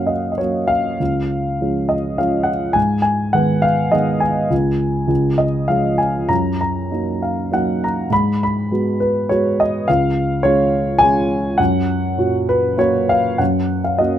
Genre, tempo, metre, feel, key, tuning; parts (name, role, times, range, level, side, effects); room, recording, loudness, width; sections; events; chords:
classical, lyrical solo piano; 101 BPM; 3/4; rubato; F# major; A4 = 440 Hz
dark grand piano; solo; 0.0-14.2 s; C#2 to B5; -15 LUFS; equal
light reverb; close, detailed microphones; -15 LUFS; side -11 dB against mid
0.0-13.4 A section
0.0 F#; 1.0 C#; 2.8 G#m; 4.5 N.C.; 5.1 C#; 6.3 F#6; 8.1 G#m7; 9.9 C#; 11.6 F#